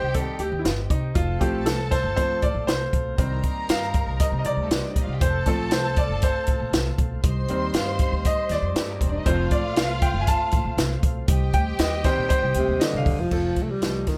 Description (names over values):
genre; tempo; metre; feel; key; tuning
uptempo 1960s-style soul; 118 BPM; 4/4; straight; F mixolydian; A4 = 440 Hz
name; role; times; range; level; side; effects
warm symphonic violin section; second line; 0.0-13.0 s; G3 to C6; -35 LUFS; equal; slapback echo
bright grand piano; accompaniment; 0.0-14.2 s; Eb3 to A5; -29 LUFS; equal; none
tonewheel organ; sustained chords; 0.0-13.3 s; G3 to Eb5; -38 LUFS; equal; slow rotary speaker
upright bass; bass; 0.0-14.2 s; Eb1 to C3; -30 LUFS; equal; none
compact cocktail drum kit; drums; 0.1-14.2 s; crash cymbal, hi-hat, kick drum, snare drum; -26 LUFS; equal; none
breathy tenor saxophone; melody; 12.6-14.2 s; C3 to A3; -28 LUFS; equal; none
room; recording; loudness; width
moderate small room reverb, RT60 0.5 s; none; -23 LUFS; mono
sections
0.0-13.3 A section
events
grand piano solo 0.0-13.3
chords
0.0 Cm; 1.2 F; 3.2 Cm; 5.2 F; 7.2 Cm; 9.3 F; 11.3 Cm; 13.3 F